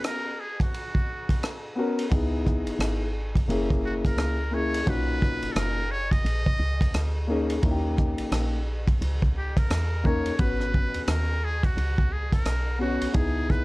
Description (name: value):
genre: hip hop, jazz-hop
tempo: 87 BPM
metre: 4/4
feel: swing 61% on 16ths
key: G# minor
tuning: A4 = 440 Hz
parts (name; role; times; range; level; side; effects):
- trumpet with metal mute; melody; 0.0-13.6 s; F#4 to D#5; -32 LUFS; equal; none
- dark concert grand piano; accompaniment; 0.0-13.6 s; A#2 to C#5; -28 LUFS; left 2 dB; none
- crunchy breakbeat drum kit; drums; 0.0-13.6 s; hi-hat, kick drum, ride cymbal, rim click; -27 LUFS; equal; none
- woody FM bass; bass; 2.1-13.6 s; F#1 to E2; -28 LUFS; equal; none
room: light reverb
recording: dark, warm production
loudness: -23 LUFS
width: side -21 dB against mid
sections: 0.0-10.4 A section; 10.4-13.6 A section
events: break 0.0-2.1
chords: 0.0 G#m11/B (rootless); 2.1 C#m7; 3.5 F#7; 4.9 Bmaj7; 7.6 D#7; 10.4 G#m7